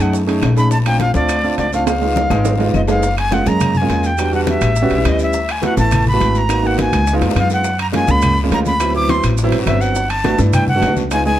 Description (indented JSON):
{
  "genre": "Afro-Cuban jazz",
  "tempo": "208 BPM",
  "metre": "4/4",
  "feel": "straight",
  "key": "unclear",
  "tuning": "A4 = 445 Hz",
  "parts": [
    { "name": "breathy bright jazz flute", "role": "melody", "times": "0.0-11.4 s", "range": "D5 to D6", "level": "-19 LUFS", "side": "equal", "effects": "none" },
    { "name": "warm concert grand piano", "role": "accompaniment", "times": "0.0-11.4 s", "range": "F#3 to A4", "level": "-18 LUFS", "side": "right 2 dB", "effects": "none" },
    { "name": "upright bass", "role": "bass", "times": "0.0-11.4 s", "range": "Gb1 to G2", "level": "-18 LUFS", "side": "equal", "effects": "none" },
    { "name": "maracas", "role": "percussion", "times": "0.0-11.4 s", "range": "none", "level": "-34 LUFS", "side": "right 8 dB", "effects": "none" },
    { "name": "bongos", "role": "percussion", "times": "0.1-11.4 s", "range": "none", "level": "-29 LUFS", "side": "left 7 dB", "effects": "none" },
    { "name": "congas", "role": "percussion", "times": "0.1-11.4 s", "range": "none", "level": "-23 LUFS", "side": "left 1 dB", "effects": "none" },
    { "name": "guiro", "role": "percussion", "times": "0.1-11.4 s", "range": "none", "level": "-34 LUFS", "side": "left 7 dB", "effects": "none" },
    { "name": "timbales", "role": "percussion", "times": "0.3-11.3 s", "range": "none", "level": "-26 LUFS", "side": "right 6 dB", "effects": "none" },
    { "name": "claves", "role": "percussion", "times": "0.4-11.3 s", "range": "none", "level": "-33 LUFS", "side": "left 8 dB", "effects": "none" }
  ],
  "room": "light reverb",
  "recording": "dark, warm production",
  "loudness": "-13 LUFS",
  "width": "side -12 dB against mid",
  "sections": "0.0-3.0 A section; 3.0-11.4 B section",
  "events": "drum fill 1.9-3.0, 7.2-7.6",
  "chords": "0.0 B13 (rootless); 0.7 Bbmaj9; 1.9 Db7; 3.0 F#maj7; 4.2 Em7; 4.8 A13; 5.3 D69; 6.5 G#m9; 7.1 C#7; 7.6 F#maj9; 8.8 D13; 10.0 Gmaj9"
}